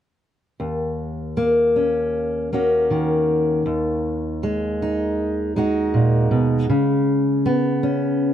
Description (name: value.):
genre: folk.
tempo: 79 BPM.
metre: 4/4.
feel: straight.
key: Eb minor.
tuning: A4 = 442 Hz.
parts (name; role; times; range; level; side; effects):
fingerpicked steel-string acoustic guitar; accompaniment; 0.6-8.3 s; Eb2 to Gb4; -18 LUFS; equal; none.
room: light reverb.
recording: dark, warm production.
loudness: -18 LUFS.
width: side -10 dB against mid.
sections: 0.6-8.3 A section.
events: none.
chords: 0.6 Ebm7; 3.7 B6/D#; 6.7 Db7(no3).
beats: | 0.60 1.37 2.13 2.90 | 3.66 4.42 5.17 5.93 | 6.69 7.45 8.20.